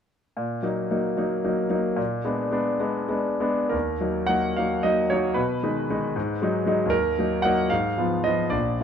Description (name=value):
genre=classical, romantic character piece for solo piano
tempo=60-80 BPM (dotted quarters)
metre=6/8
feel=rubato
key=Eb minor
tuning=A4 = 441 Hz
part: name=bright concert grand piano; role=solo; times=0.4-8.8 s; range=Bb1 to Gb5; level=-22 LUFS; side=equal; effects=none
room=moderate recital hall reverb, RT60 1.5 s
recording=close, detailed microphones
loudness=-22 LUFS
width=side -8 dB against mid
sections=0.4-3.7 A section; 3.7-8.8 B section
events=none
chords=0.4 Ebm/Bb; 2.0 Bb7b9; 3.7 Ebm; 5.4 Abm/Cb; 6.2 Abm7; 6.9 Ebm; 7.7 Fdim/Ab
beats=| 0.37 1.20 | 1.99 2.80 | 3.73 4.59 | 5.38 6.17 | 6.93 7.71 | 8.54